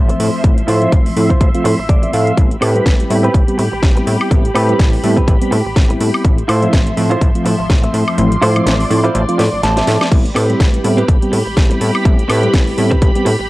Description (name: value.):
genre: filtered disco house.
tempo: 124 BPM.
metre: 4/4.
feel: swing 57% on 16ths.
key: A minor.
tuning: A4 = 439 Hz.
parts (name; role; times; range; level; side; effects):
string machine, full ensemble; sustained chords; 0.0-13.5 s; F3 to C6; -22 LUFS; equal; phaser, ensemble chorus, sidechain pumping, low-pass filter.
plucky analog bass; bass; 0.0-13.5 s; A1 to A2; -17 LUFS; equal; sidechain pumping, low-pass filter.
reed electric piano; accompaniment; 0.1-13.3 s; F3 to E5; -18 LUFS; equal; phaser, sidechain pumping, low-pass filter.
direct-recorded clean electric guitar; riff; 0.1-13.4 s; C4 to A5; -18 LUFS; right 2 dB; sidechain pumping, low-pass filter.
house drum kit; drums; 0.1-13.4 s; crash cymbal, hi-hat, snare drum, woodblock; -22 LUFS; equal; sidechain pumping on hats, sidechain pumping on perc, sidechain pumping on cymbals.
electronic kick drum; drums; 0.4-13.1 s; none; -12 LUFS; equal; none.
room: digital ambience.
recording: dry, gritty hardware recording.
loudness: -11 LUFS.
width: side -18 dB against mid.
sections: 0.0-13.5 A section.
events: clean electric guitar fill 1.6-2.4, 9.2-10.1, 13.3; kick drops out 8.2-10.1; drum fill 9.4-10.1.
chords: 0.0 Dm9/A (rootless); 2.4 Am9; 6.2 Dm9/A; 10.1 Am9.